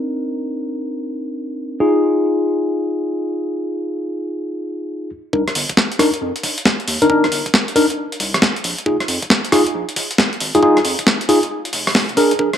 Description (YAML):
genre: UK garage, two-step garage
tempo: 136 BPM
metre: 4/4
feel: swing 65% on 16ths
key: C minor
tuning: A4 = 440 Hz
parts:
  - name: mellow tine electric piano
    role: stabs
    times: 0.0-12.5 s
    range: C4 to Bb4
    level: -17 LUFS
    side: left 1 dB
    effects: low-pass filter, tape echo
  - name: saturated sub bass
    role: bass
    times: 5.3-12.5 s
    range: F1 to F2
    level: -29 LUFS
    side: equal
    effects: high-pass filter
  - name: electronic kick drum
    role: drums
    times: 5.3-12.5 s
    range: none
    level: -27 LUFS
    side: equal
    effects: high-pass filter on kick
  - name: breakbeat sampler-style drum kit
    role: drums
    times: 5.5-12.6 s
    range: hi-hat, rim click, snare drum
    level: -17 LUFS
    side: equal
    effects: overdrive, low-pass filter on hats, low-pass filter on snare, low-pass filter on perc, low-pass filter on room
room: moderate digital room reverb, RT60 1.2 s, digital ambience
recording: dark, warm production, high-pass filter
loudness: -15 LUFS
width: side -9 dB against mid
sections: 0.0-5.3 A section; 5.3-12.6 B section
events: build-up 5.3-12.6; filter sweep on tine electric piano 5.3-12.6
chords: 0.0 Cm9; 1.8 Fm7; 5.1 N.C.; 5.3 Cm9; 8.9 Fm7